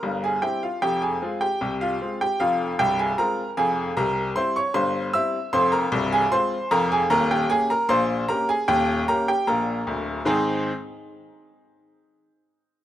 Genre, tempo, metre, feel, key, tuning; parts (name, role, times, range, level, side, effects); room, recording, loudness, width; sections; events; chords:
ragtime piano; 76 BPM; 2/4; straight; Ab major; A4 = 440 Hz
bright baby grand piano; solo; 0.0-10.7 s; C1 to E6; -21 LUFS; equal
moderate plate reverb, RT60 2.5 s; rough home demo mix; -20 LUFS; side -12 dB against mid
0.0-10.3 A section; 10.3-11.8 B section
0.0 C7; 0.8 Fm; 4.0 C7; 5.5 Fm; 7.1 Eb7; 10.3 Ab